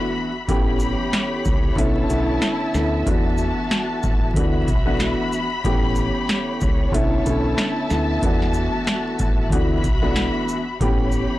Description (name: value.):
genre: hip hop, boom-bap hip-hop.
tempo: 93 BPM.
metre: 4/4.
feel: swing 58% on 16ths.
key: unclear.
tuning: A4 = 440 Hz.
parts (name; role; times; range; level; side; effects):
dark upright piano; accompaniment; 0.0-11.4 s; D3 to G4; -23 LUFS; equal; high-pass filter, low-pass filter.
warm studio string section; sustained chords; 0.0-11.4 s; E4 to B5; -27 LUFS; left 1 dB; high-pass filter, low-pass filter.
deep dub fingered electric bass; bass; 0.5-11.3 s; A1 to E2; -24 LUFS; equal; tube saturation.
booming analog drum machine; drums; 0.5-11.3 s; hi-hat, kick drum, shaker, snare drum; -22 LUFS; equal; overdrive.
room: light reverb.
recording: blown-out, overdriven recording, vinyl crackle, overdrive, lossy compression artefacts.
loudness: -18 LUFS.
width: side -16 dB against mid.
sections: 0.0-11.4 A section.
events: break 0.0-0.5.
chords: 0.5 A9; 1.8 Bm11; 3.1 E9sus4; 4.4 D69; 5.6 A9; 6.9 Bm11; 8.2 E9sus4; 9.5 D69; 10.8 A9.